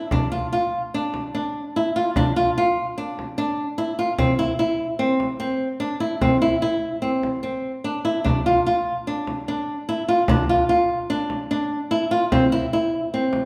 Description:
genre	contemporary instrumental, chamber music in an uneven meter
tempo	148 BPM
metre	5/4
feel	straight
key	D minor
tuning	A4 = 441 Hz
part	flamenco guitar	arpeggios	0.0-13.4 s	C4 to F4	-23 LUFS	equal	none
part	frame drum	percussion	0.1-13.5 s	none	-27 LUFS	equal	none
room	wet recital hall reverb, RT60 1.4 s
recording	heard from further back in the room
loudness	-22 LUFS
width	mono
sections	0.1-13.5 A section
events	none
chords	none

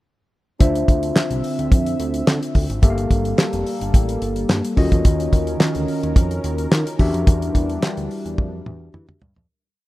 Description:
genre	early-eighties boogie funk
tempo	108 BPM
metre	4/4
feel	straight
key	D minor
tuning	A4 = 440 Hz
part	overdriven tine electric piano	accompaniment	0.6-9.2 s	Bb3 to F5	-25 LUFS	left 2 dB	phaser
part	warm analog pad	sustained chords	0.6-9.5 s	D3 to E5	-26 LUFS	right 1 dB	chorus
part	fat analog bass	bass	0.6-9.5 s	F1 to E3	-24 LUFS	equal	none
part	damped 70s drum kit	drums	0.6-9.5 s	handclaps, hi-hat, kick drum, snare drum, toms	-16 LUFS	equal	none
room	small room ambience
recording	rough home demo mix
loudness	-17 LUFS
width	side -17 dB against mid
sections	0.6-9.5 verse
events	fade-out 7.3-9.5; drum fill 8.4-9.5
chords	0.6 Dm9; 2.8 Gm9; 4.8 Ebm9; 7.0 Em9

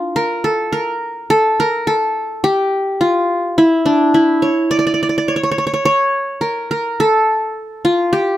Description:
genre	arabic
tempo	105 BPM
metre	4/4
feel	straight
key	D maqam nahawand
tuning	A4 = 439 Hz
part	qanun	melody	0.0-8.4 s	D4 to D5	-14 LUFS	equal	none
room	little or no reverb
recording	close, detailed microphones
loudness	-14 LUFS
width	side -13 dB against mid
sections	0.0-8.4 A section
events	none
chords	none

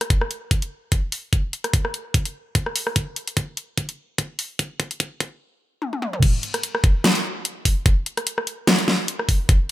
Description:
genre	dubstep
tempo	147 BPM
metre	4/4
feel	swing 55% on 16ths, half-time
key	none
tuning	none
part	dubstep drum kit	drums	0.0-9.7 s	crash cymbal, hi-hat, rim click, snare drum, toms	-22 LUFS	equal	none
part	electronic kick drum	drums	0.1-9.6 s	none	-19 LUFS	equal	none
room	little or no reverb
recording	high-pass filter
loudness	-20 LUFS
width	side -15 dB against mid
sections	0.0-6.2 A section; 6.2-9.7 B section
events	build-up 0.0-6.2; filter sweep 0.0-6.2; drum fill 3.0-5.4, 5.8-6.2; drop 6.2-9.7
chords	none

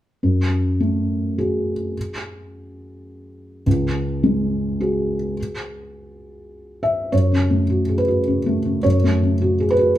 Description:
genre	classical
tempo	105 BPM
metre	3/4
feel	rubato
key	F# minor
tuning	A4 = 440 Hz
part	felt-muted upright piano	accompaniment	0.2-10.0 s	C#2 to E5	-18 LUFS	equal	none
room	wet large studio reverb, RT60 0.8 s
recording	band playing live in one room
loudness	-18 LUFS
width	side -13 dB against mid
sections	0.2-7.1 A section; 7.1-10.0 B section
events	none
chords	0.2 F#madd9; 3.7 C#sus4; 7.1 F#madd9

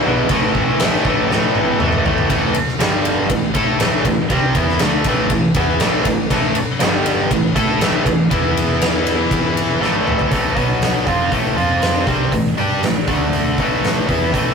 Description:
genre	hard rock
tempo	120 BPM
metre	4/4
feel	straight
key	A minor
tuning	A4 = 439 Hz
part	tight distorted guitar	riff	0.0-14.5 s	E2 to A4	-16 LUFS	equal	distortion
part	hollow-body short-scale picked electric bass	bass	0.1-14.5 s	G1 to A2	-26 LUFS	equal	none
part	huge arena drum kit	drums	0.3-14.5 s	crash cymbal, hi-hat, kick drum, ride cymbal, snare drum, toms	-19 LUFS	equal	none
room	wet booth ambience, RT60 0.2 s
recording	rough rehearsal-room recording, warm saturation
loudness	-14 LUFS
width	side -6 dB against mid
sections	0.0-2.3 A section; 2.3-10.3 B section; 10.3-14.5 C section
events	drum fill 1.3-2.3, 9.8-10.3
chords	0.3 A5; 2.8 G5; 3.3 Am; 6.8 G5; 7.3 A5; 8.3 E5; 9.8 A5; 10.6 B5; 11.1 Am; 11.6 F5; 12.1 Am; 13.1 D5; 13.6 A5

